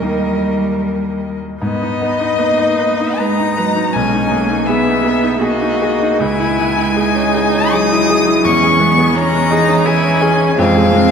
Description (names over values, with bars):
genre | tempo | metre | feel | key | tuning
classical, slow romantic movement for piano quartet | 71-85 BPM | 3/4 | rubato | G# minor | A4 = 440 Hz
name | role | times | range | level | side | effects
rich violin | melody | 0.0-11.1 s | D#5 to D#6 | -17 LUFS | left 4 dB | none
rich cello | second line | 0.0-11.1 s | E3 to C4 | -18 LUFS | right 3 dB | none
bright grand piano | accompaniment | 0.0-11.1 s | B1 to B4 | -17 LUFS | left 1 dB | none
clear viola | accompaniment | 0.0-11.1 s | B3 to A#4 | -20 LUFS | right 2 dB | none
room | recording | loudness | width
wet cathedral reverb, RT60 4.8 s | recorded in a church or concert hall | -12 LUFS | side -6 dB against mid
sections
0.0-1.6 A section; 1.6-11.1 B section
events
none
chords
0.0 D#; 1.6 G#m; 3.9 G#m/B; 6.2 C#m; 8.4 C#m/E; 10.6 Fm